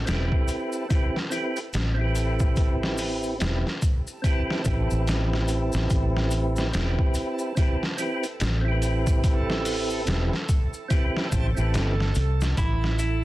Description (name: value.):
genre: trip hop.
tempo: 72 BPM.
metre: 4/4.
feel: swing 60% on 16ths.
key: A minor.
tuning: A4 = 440 Hz.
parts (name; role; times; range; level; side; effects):
fingered electric bass; bass; 0.0-13.2 s; E1 to C2; -25 LUFS; equal; none.
backwards swelling texture; texture; 0.0-13.2 s; A4; -38 LUFS; right 5 dB; built-in reverb.
percussive tonewheel organ; accompaniment; 0.1-12.0 s; C4 to C5; -29 LUFS; right 1 dB; overdrive, chorus vibrato, fast rotary speaker, harmonic tremolo, vintage 12-bit sampler grit, tape echo.
trip hop sampler-style drum kit; drums; 0.1-13.2 s; hi-hat, kick drum, snare drum; -25 LUFS; equal; overdrive, vintage 12-bit sampler grit, small room ambience.
maracas; percussion; 0.1-13.2 s; none; -41 LUFS; left 2 dB; none.
clean electric guitar; melody; 12.6-13.2 s; E4; -28 LUFS; right 4 dB; vintage 12-bit sampler grit.
room: little or no reverb.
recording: dense, heavily limited modern master, vinyl crackle.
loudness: -22 LUFS.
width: side -17 dB against mid.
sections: 0.0-13.2 A section.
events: none.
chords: 0.0 Am7.